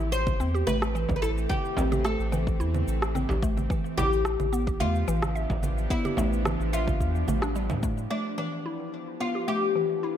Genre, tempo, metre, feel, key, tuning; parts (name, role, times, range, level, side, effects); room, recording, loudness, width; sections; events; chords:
organic downtempo; 109 BPM; 4/4; straight; A4 = 436 Hz
oud; melody; 0.0-10.2 s; D4 to C5; -31 LUFS; left 3 dB; ping-pong delay
bowed-like drone; sustained chords; 0.0-10.2 s; E3 to G4; -36 LUFS; equal; built-in reverb, sidechain pumping
mallet-like synth pluck; arpeggios; 0.0-10.2 s; E3 to E5; -32 LUFS; equal; chorus, ping-pong delay
round analog bass; bass; 0.0-8.1 s; A1 to A2; -28 LUFS; equal; sidechain pumping
electronic shaker, congas and rim click; drums; 0.0-8.1 s; -33 LUFS; right 3 dB
electronic kick drum; drums; 0.3-7.9 s; -30 LUFS; equal
frame drum; percussion; 1.1-7.8 s; -34 LUFS; right 1 dB
light reverb, digital ambience; -24 LUFS; side -10 dB against mid
0.0-8.1 A section; 8.1-10.2 B section
0.0 Am7; 3.7 G7/A; 8.1 G7